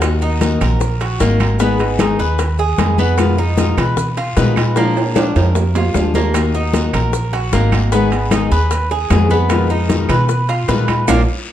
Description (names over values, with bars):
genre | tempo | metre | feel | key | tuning
latin, Cuban son and guajira | 152 BPM | 4/4 | straight | Eb minor | A4 = 440 Hz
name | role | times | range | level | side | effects
flamenco guitar | accompaniment | 0.0-11.2 s | Cb3 to Ab4 | -19 LUFS | left 5 dB | none
upright bass | bass | 0.0-11.2 s | Ab1 to Cb3 | -17 LUFS | right 1 dB | none
bongos | percussion | 0.0-11.2 s | none | -26 LUFS | left 7 dB | none
claves | percussion | 0.0-11.2 s | none | -31 LUFS | right 8 dB | none
congas | percussion | 0.0-11.2 s | none | -23 LUFS | left 2 dB | none
guiro | percussion | 0.0-11.2 s | none | -34 LUFS | left 5 dB | none
maracas | percussion | 0.0-11.2 s | none | -34 LUFS | right 9 dB | none
timbales | percussion | 0.0-11.2 s | none | -24 LUFS | right 5 dB | none
Cuban tres | arpeggios | 0.2-11.2 s | Bb3 to Cb5 | -20 LUFS | right 3 dB | none
room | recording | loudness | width
moderate large studio reverb, RT60 0.8 s | dark, warm production | -13 LUFS | side -11 dB against mid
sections
0.0-11.5 A section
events
drum fill 4.8-6.3; band accent 11.1-11.5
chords
0.0 Ebm; 1.6 Abm; 3.2 Fm7b5; 4.8 Bb7; 6.3 Ebm; 7.9 Abm; 9.5 Fm7b5